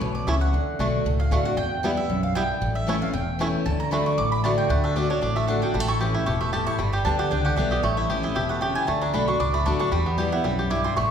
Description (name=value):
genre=bluegrass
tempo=230 BPM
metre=4/4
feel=swing 54% on 8ths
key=D major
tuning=A4 = 441 Hz
part: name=picked steel-string acoustic guitar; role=accompaniment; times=0.0-11.1 s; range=E2 to G4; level=-26 LUFS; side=left 1 dB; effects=none
part: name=mandolin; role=stabs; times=0.0-11.1 s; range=C#5 to D6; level=-28 LUFS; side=right 3 dB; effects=none
part: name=upright bass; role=bass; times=0.0-11.1 s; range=E1 to E2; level=-27 LUFS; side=left 1 dB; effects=none
part: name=bluegrass banjo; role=melody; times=0.3-11.1 s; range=G3 to G4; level=-28 LUFS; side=right 1 dB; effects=none
room=wet recital hall reverb, RT60 1.4 s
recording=recorded in a church or concert hall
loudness=-21 LUFS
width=side -8 dB against mid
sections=0.0-4.7 A section; 4.7-11.1 A section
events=mandolin solo 0.0-11.1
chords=0.0 A (rootless); 0.5 D; 1.6 Em; 2.6 A; 3.7 D; 5.7 A; 6.8 G; 7.8 A; 8.9 D; 9.9 Em